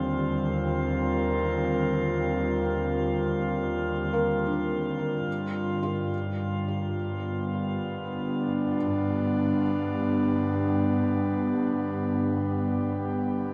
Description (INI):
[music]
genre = ambient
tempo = free time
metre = none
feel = none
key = unclear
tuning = A4 = 443 Hz
[part]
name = airy breathy pad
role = sustained chords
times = 0.0-13.5 s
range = D3 to Bb4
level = -29 LUFS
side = equal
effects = chorus
[part]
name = rich studio double bass section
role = bass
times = 0.0-13.5 s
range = Eb2 to G2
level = -36 LUFS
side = equal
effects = none
[part]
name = drifting glass-harmonics texture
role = texture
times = 0.0-13.5 s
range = F4 to F5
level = -41 LUFS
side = equal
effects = chorus, built-in reverb
[part]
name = felt-muted upright piano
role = arpeggios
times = 4.1-13.5 s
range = Bb3 to F4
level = -36 LUFS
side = equal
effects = analog chorus, delay
[sound]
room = wet plate reverb, RT60 2.4 s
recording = dreamy mix soaked in reverb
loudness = -27 LUFS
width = mono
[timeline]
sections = 0.0-13.5 A section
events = fade-out on synth texture 0.0-13.5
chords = 0.0 Ebadd9; 5.3 G